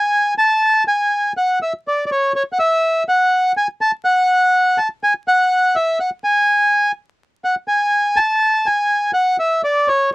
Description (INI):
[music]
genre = tango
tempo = 123 BPM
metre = 4/4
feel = rubato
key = unclear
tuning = A4 = 437 Hz
[part]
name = bandoneon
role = solo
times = 0.0-10.1 s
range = C#5 to A5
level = -14 LUFS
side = equal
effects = none
[sound]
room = little or no reverb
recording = dry, close 1970s-style studio recording, vinyl crackle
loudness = -14 LUFS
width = side -26 dB against mid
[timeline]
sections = 0.1-10.1 A section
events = none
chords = none